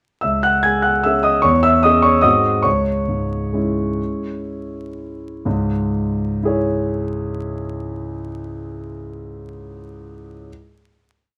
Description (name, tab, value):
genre	classical, piano waltz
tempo	114-154 BPM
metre	3/4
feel	rubato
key	C# minor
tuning	A4 = 438 Hz
part	warm concert grand piano	solo	0.2-10.5 s	C#2 to G#6	-20 LUFS	equal	none
room	light reverb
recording	vinyl crackle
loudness	-18 LUFS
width	mono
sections	0.2-5.5 A section; 5.5-8.3 final chord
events	slowing down 2.0-5.5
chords	0.2 C#m; 1.4 C#m/E; 2.2 G#7; 2.6 C#m